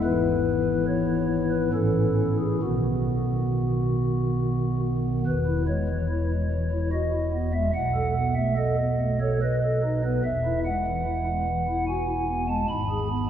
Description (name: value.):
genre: classical, chorale-style piece for pipe organ.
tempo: 67-74 BPM.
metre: 3/4.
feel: rubato.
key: E major.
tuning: A4 = 440 Hz.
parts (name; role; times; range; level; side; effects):
pipe organ, stopped flute; solo; 0.0-13.3 s; E1 to B5; -22 LUFS; equal; none.
room: wet church reverb, RT60 3.2 s.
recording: heard from further back in the room.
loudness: -23 LUFS.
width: side -9 dB against mid.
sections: 0.0-5.3 A section; 5.3-13.3 B section.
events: none.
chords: 0.0 E/G#; 1.7 A; 2.6 B; 5.3 E; 7.7 B7; 10.2 E; 12.7 E/G# (rootless).